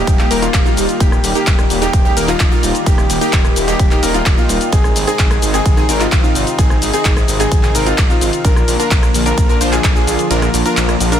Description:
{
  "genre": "EDM, festival progressive house",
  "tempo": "129 BPM",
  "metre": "4/4",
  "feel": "straight",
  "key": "Eb major",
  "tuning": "A4 = 441 Hz",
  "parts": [
    { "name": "lush unison pad", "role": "sustained chords", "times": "0.0-11.2 s", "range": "C3 to G4", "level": "-22 LUFS", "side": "left 1 dB", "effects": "chorus, phaser, sidechain pumping" },
    { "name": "bright baby grand piano", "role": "arpeggios", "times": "0.0-11.2 s", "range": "F4 to C5", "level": "-21 LUFS", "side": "left 2 dB", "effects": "sidechain pumping, tape echo" },
    { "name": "supersaw stab", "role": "riff", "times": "0.0-11.2 s", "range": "Bb3 to C5", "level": "-20 LUFS", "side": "right 1 dB", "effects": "sidechain pumping, tape echo" },
    { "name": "wide detuned saw bass", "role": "bass", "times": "0.0-11.2 s", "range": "Eb1 to Bb1", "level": "-20 LUFS", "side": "equal", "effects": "chorus, tube saturation, sidechain pumping" },
    { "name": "big-room dance drum kit", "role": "drums", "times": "0.1-11.2 s", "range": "handclaps, hi-hat, ride cymbal, rim click, shaker", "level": "-20 LUFS", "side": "left 1 dB", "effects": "studio reverb" },
    { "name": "electronic kick drum", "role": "drums", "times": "0.1-9.9 s", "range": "none", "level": "-13 LUFS", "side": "equal", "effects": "studio reverb" }
  ],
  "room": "light reverb",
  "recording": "dense, heavily limited modern master",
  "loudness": "-11 LUFS",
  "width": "side -9 dB against mid",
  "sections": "0.0-11.2 A section",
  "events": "kick drops out 10.3-11.2",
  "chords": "0.0 Eb; 4.7 Ab; 8.4 Bb",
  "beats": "0.07 0.54 | 1.00 1.47 1.93 2.40 | 2.87 3.33 3.79 4.26 | 4.72 5.19 5.66 6.12 | 6.58 7.05 7.52 7.98 | 8.45 8.91 9.38 9.84 | 10.31 10.77"
}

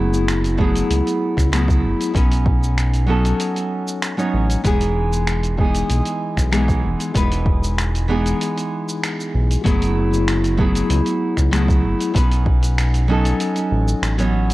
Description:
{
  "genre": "sunset chillout",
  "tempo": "96 BPM",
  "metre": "4/4",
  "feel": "straight",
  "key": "E major",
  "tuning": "A4 = 439 Hz",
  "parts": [
    { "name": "nylon-string guitar", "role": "accompaniment", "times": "0.0-14.5 s", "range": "E3 to C#5", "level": "-20 LUFS", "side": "equal", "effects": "auto-pan, vintage 12-bit sampler grit, ping-pong delay" },
    { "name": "round analog bass", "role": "bass", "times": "0.0-14.5 s", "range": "E1 to C#2", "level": "-19 LUFS", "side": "equal", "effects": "none" },
    { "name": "dusty soul sampler-style drum kit", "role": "drums", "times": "0.1-14.5 s", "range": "finger snaps, hi-hat, shaker", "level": "-28 LUFS", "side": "right 1 dB", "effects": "none" },
    { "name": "electronic kick drum", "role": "drums", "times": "0.6-12.6 s", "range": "none", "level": "-19 LUFS", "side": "equal", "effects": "none" }
  ],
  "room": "light reverb",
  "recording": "worn, warbling old tape, cassette tape, warbly pitch drift",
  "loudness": "-16 LUFS",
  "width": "side -18 dB against mid",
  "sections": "0.0-14.5 A section",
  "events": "none",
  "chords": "0.0 F#m11; 2.2 B9; 4.7 Emaj7; 9.7 F#m11; 12.2 B9",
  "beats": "0.28 0.91 1.53 | 2.15 2.78 3.40 4.03 | 4.66 5.28 5.91 6.53 | 7.16 7.78 8.40 9.03 | 9.65 10.28 10.90 11.53 | 12.15 12.78 13.40 14.03"
}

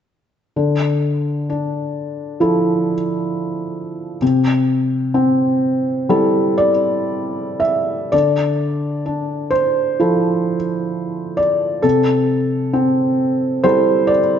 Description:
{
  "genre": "neoclassical minimalist piano",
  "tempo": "56-68 BPM",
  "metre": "4/4",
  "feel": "rubato",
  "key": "D minor",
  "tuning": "A4 = 440 Hz",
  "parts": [
    { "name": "felt-muted upright piano", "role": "solo", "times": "0.6-14.4 s", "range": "C3 to E5", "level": "-15 LUFS", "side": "equal", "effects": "none" }
  ],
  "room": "moderate scoring stage reverb, RT60 1.6 s",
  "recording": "nothing above 7.9 kHz",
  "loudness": "-15 LUFS",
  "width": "side -8 dB against mid",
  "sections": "0.6-8.1 A section; 8.1-14.4 B section",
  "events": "none",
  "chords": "0.6 Dmadd9; 4.2 Am7/C; 8.1 Dmadd9; 11.8 Am7/C",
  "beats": "| 0.56 1.50 2.41 3.30 | 4.21 5.14 6.10 7.09 | 8.13 9.06 9.99 10.93 | 11.84 12.75 13.66"
}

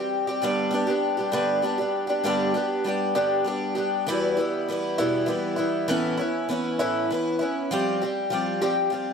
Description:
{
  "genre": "rock",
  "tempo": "66 BPM (dotted quarters)",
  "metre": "6/8",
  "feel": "straight",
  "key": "unclear",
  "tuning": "A4 = 440 Hz",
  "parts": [
    { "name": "picked twelve-string acoustic guitar", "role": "solo", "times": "0.0-9.1 s", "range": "E2 to G4", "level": "-23 LUFS", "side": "equal", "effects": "none" }
  ],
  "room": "light reverb",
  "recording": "none",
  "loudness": "-22 LUFS",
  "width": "side -6 dB against mid",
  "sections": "0.0-2.2 A section; 2.2-9.1 B section",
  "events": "none",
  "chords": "0.4 G; 4.1 Em; 5.9 Aadd9; 7.7 Fsus2",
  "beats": "| 0.39 1.31 | 2.23 3.15 | 4.06 4.98 | 5.89 6.80 | 7.72 8.63"
}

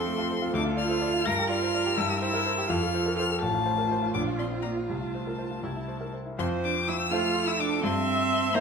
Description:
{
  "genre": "quick classical-period movement for piano quartet",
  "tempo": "83 BPM (dotted quarters)",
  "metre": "6/8",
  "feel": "straight",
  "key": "F major",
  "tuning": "A4 = 440 Hz",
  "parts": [
    { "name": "rich violin", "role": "melody", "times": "0.0-8.6 s", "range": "A5 to Bb6", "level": "-30 LUFS", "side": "left 6 dB", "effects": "none" },
    { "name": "rich cello", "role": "second line", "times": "0.0-8.6 s", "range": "A3 to Bb4", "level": "-30 LUFS", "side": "right 7 dB", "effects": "none" },
    { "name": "clear concert grand piano", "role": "accompaniment", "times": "0.0-8.6 s", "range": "A1 to E5", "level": "-30 LUFS", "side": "left 2 dB", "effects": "none" },
    { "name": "clear viola", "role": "accompaniment", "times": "0.0-8.6 s", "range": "E4 to E5", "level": "-33 LUFS", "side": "right 2 dB", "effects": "none" }
  ],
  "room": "wet recital hall reverb, RT60 1.4 s",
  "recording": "none",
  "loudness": "-25 LUFS",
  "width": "side -6 dB against mid",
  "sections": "0.0-6.4 A section; 6.4-8.6 B section",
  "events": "none",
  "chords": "0.0 F; 0.5 Dm; 1.3 Gm7; 2.0 C7/G; 2.7 F; 3.4 F/A; 4.1 Bb; 4.9 F/C; 5.6 C; 6.4 F; 7.8 Em/G",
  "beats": "| 0.55 1.26 | 1.98 2.69 | 3.41 4.15 | 4.89 5.64 | 6.39 7.12 | 7.84 8.56"
}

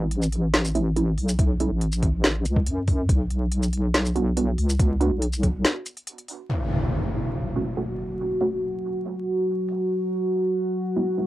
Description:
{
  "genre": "deep dubstep",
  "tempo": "141 BPM",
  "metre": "4/4",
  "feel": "half-time",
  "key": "F# minor",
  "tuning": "A4 = 440 Hz",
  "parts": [
    { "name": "deep soft wobble bass", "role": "bass", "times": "0.0-5.6 s", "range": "A1 to F#2", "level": "-23 LUFS", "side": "equal", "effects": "chorus" },
    { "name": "deep house drum kit", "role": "drums", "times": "0.1-9.8 s", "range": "hi-hat, shaker, snare drum", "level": "-24 LUFS", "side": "equal", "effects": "low-pass filter on hats, low-pass filter on perc, low-pass filter on snare" },
    { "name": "filtered dub chord stab", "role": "stabs", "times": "0.7-11.3 s", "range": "G#3 to F#4", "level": "-28 LUFS", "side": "right 4 dB", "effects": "phaser, wide subtle chorus, cassette tape, dub echo" },
    { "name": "electronic kick drum", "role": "drums", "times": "1.4-5.5 s", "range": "none", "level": "-22 LUFS", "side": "equal", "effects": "none" },
    { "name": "deep dark ambient pad", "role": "sustained chords", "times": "7.3-11.3 s", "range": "F#4", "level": "-25 LUFS", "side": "equal", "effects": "chorus, built-in reverb, cassette tape" },
    { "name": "impact", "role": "sound effects", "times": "6.5-8.2 s", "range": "none", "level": "-27 LUFS", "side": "equal", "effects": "none" }
  ],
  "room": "moderate booth ambience, RT60 0.2 s",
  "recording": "home recording on cassette, vinyl crackle",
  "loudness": "-22 LUFS",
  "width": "side -15 dB against mid",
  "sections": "0.0-6.5 A section; 6.5-11.3 B section",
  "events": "filter sweep on synth stab 0.0-6.5; break 5.6-6.5; impact 6.5-8.2",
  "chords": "0.0 A; 3.1 Bm; 6.5 F#m; 9.9 E",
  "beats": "0.11 0.54 0.96 | 1.39 1.81 2.24 2.67 | 3.09 3.52 3.94 4.37 | 4.79 5.22 5.64 6.07 | 6.50 6.92 7.35 7.77 | 8.20 8.62 9.05 9.47 | 9.90 10.33 10.75 11.18"
}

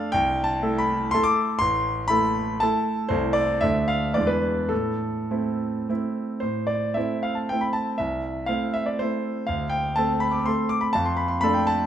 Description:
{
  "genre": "classical, romantic triple-time dance for piano with dotted rhythms",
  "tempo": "97-130 BPM",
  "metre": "3/4",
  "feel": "rubato",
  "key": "A minor",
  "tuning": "A4 = 440 Hz",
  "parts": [
    { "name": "clear concert grand piano", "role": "solo", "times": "0.0-11.9 s", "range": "A1 to D6", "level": "-22 LUFS", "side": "equal", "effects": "none" }
  ],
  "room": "wet recital hall reverb, RT60 1.6 s",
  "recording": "none",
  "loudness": "-22 LUFS",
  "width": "side -10 dB against mid",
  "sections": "0.0-6.4 A section; 6.4-11.9 A section",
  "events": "none",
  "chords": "0.1 Am/C; 1.6 Am; 3.1 Am/C; 3.6 Dm; 4.2 E7; 4.7 Am; 8.0 Am/C; 9.5 D5; 10.9 Dm/F",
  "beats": "| 0.14 0.63 1.13 | 1.60 2.10 2.62 | 3.10 3.62 4.16 | 4.71 5.31 5.90 | 6.43 6.96 7.49 | 7.98 8.48 9.00 | 9.48 9.97 10.47 | 10.95 11.44"
}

